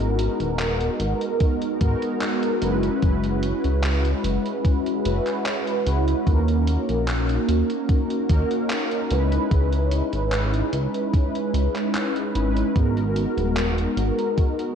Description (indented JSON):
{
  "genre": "vaporwave",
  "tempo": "74 BPM",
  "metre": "4/4",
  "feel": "straight",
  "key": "G# minor",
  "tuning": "A4 = 438 Hz",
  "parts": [
    { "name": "mellow synth brass", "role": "accompaniment", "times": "0.0-14.8 s", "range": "G#3 to B4", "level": "-23 LUFS", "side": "equal", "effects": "phaser, analog chorus, diffuse ambient delay" },
    { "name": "chorused synth bass", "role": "bass", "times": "0.0-14.1 s", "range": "D#1 to D#2", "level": "-23 LUFS", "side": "equal", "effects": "none" },
    { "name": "gated 80s digital drum machine", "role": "drums", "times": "0.0-14.7 s", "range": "handclaps, hi-hat", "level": "-32 LUFS", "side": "equal", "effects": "gated reverb, vintage 12-bit sampler grit" },
    { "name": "electronic kick drum", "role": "drums", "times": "1.4-14.5 s", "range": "none", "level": "-20 LUFS", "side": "equal", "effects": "vintage 12-bit sampler grit" }
  ],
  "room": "moderate plate reverb, RT60 2.2 s",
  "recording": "dreamy mix soaked in reverb, cassette tape",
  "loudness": "-20 LUFS",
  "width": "side -8 dB against mid",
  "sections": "0.0-14.8 A section",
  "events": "none",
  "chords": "0.0 G#m9; 2.6 F#9sus4; 6.3 D#m7; 9.1 C#m9; 12.8 G#m9",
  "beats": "0.59 1.41 2.22 | 3.03 3.84 4.65 5.46 | 6.27 7.08 7.89 8.70 | 9.51 10.32 11.13 11.95 | 12.76 13.57 14.38"
}